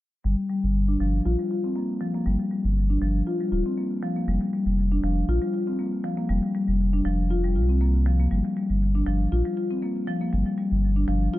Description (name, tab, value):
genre	house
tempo	119 BPM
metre	4/4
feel	straight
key	G minor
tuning	A4 = 440 Hz
part	marimba with soft mallets	arpeggios	0.2-11.4 s	F3 to F4	-25 LUFS	left 2 dB	vintage 12-bit sampler grit, low-pass filter, dub echo
part	warm sub bass	bass	0.2-11.3 s	D1 to C2	-22 LUFS	equal	none
room	light reverb, small room ambience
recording	none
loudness	-22 LUFS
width	side -16 dB against mid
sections	0.2-11.4 A section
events	filter sweep on marimba 0.2-11.4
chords	0.2 Gm; 4.3 Fsus4; 8.3 N.C.